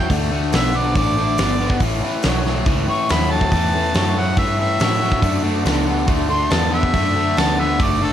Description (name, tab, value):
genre	blues rock power trio and southern rock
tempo	140 BPM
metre	4/4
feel	straight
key	unclear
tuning	A4 = 441 Hz
part	bright harmonica	melody	0.0-8.1 s	A4 to C#6	-22 LUFS	equal	overdrive, analog delay
part	crunchy overdriven guitar	riff	0.0-8.1 s	A2 to B3	-20 LUFS	left 2 dB	spring reverb
part	vintage muted picked electric bass	bass	0.0-8.1 s	F#1 to A2	-22 LUFS	equal	none
part	big rock drum kit	drums	0.1-7.9 s	hi-hat, kick drum, snare drum	-22 LUFS	equal	none
part	overdriven tonewheel organ	sustained chords	5.2-8.1 s	A3 to D5	-31 LUFS	right 5 dB	none
room	light reverb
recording	none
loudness	-16 LUFS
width	side -10 dB against mid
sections	0.0-8.1 A section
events	harmonica solo 0.0-8.1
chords	0.1 D5; 1.8 A5; 5.2 D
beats	| 0.10 0.53 0.96 1.39 | 1.81 2.24 2.67 3.10 | 3.53 3.95 4.38 4.81 | 5.24 5.67 6.09 6.52 | 6.95 7.38 7.80